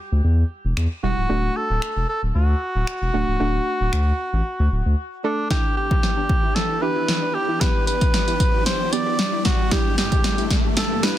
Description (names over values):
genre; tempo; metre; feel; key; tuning
dance-pop; 114 BPM; 4/4; straight; E minor; A4 = 440 Hz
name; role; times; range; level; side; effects
saturated sub bass; bass; 0.1-4.9 s; C#1 to E2; -20 LUFS; equal; sidechain pumping
punchy analog drum machine; drums; 0.8-11.2 s; finger snaps, hi-hat, kick drum, snare drum; -20 LUFS; equal; soft clipping on snare
mellow cor anglais; melody; 1.0-11.2 s; D4 to D5; -25 LUFS; equal; ping-pong delay
soft round pluck; accompaniment; 1.0-11.2 s; G3 to A4; -27 LUFS; right 2 dB; chorus
supersaw chords; sustained chords; 5.5-11.2 s; G2 to D4; -30 LUFS; right 1 dB; sidechain pumping
wide unison pluck; arpeggios; 5.5-10.7 s; E3 to G4; -32 LUFS; left 4 dB; sidechain pumping, ping-pong delay
riser; sound effects; 7.3-11.2 s; none; -31 LUFS; left 2 dB; none
room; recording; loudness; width
little or no reverb; dense, heavily limited modern master; -18 LUFS; side -12 dB against mid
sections
0.0-5.5 A section; 5.5-11.2 B section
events
break 5.0-5.5; build-up 5.5-11.2; drum fill 5.5-11.2; riser 7.3-11.2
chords
0.0 Emadd9; 1.3 D; 5.5 Em7; 9.7 Em7/G